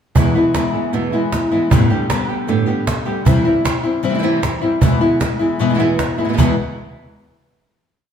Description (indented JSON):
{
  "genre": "flamenco",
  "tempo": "154 BPM",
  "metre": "4/4",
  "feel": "straight",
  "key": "unclear",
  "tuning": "A4 = 440 Hz",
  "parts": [
    { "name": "flamenco guitar", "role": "stabs", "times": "0.1-6.5 s", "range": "E2 to G4", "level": "-21 LUFS", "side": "right 4 dB", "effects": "none" },
    { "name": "nylon-string guitar", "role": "accompaniment", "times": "0.2-6.5 s", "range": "E2 to G4", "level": "-17 LUFS", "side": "left 3 dB", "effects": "none" },
    { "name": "cajon", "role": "percussion", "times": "0.2-6.5 s", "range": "none", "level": "-18 LUFS", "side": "right 2 dB", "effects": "none" }
  ],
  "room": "wet stone room reverb, RT60 1.3 s",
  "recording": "heard from further back in the room",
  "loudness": "-14 LUFS",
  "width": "side -8 dB against mid",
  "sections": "0.2-6.4 groove; 6.4-7.9 final chord",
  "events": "none",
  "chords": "0.2 E; 1.7 Gadd9; 3.3 C; 4.8 E"
}